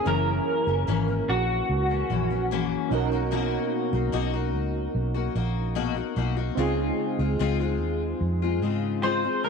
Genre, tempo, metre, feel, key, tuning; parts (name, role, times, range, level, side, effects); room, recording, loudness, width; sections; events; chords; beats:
indie pop, bedroom pop; 74 BPM; 4/4; straight; A4 = 440 Hz
electric guitar through a small old amp; melody; 0.0-2.9, 9.0-9.5 s; Gb4 to C5; -27 LUFS; right 1 dB; ensemble chorus, slapback echo
picked steel-string acoustic guitar; accompaniment; 0.0-9.5 s; Gb2 to Gb4; -28 LUFS; left 13 dB; lush chorus, warbly pitch drift
warbly lo-fi synth keys; accompaniment; 0.0-9.5 s; C4 to Bb4; -32 LUFS; right 14 dB; chorus
vintage muted fingered electric bass; bass; 0.1-9.3 s; Gb1 to Ab2; -27 LUFS; right 1 dB
light reverb, digital ambience; 1960s-style stereo with parts hard left and right; -23 LUFS; side -5 dB against mid
0.0-9.5 A section
0.1 Gb7; 2.9 Cbmaj7; 6.6 Dbmaj7
| 0.06 0.87 1.69 2.50 | 3.32 4.13 4.95 5.76 | 6.58 7.39 8.21 9.02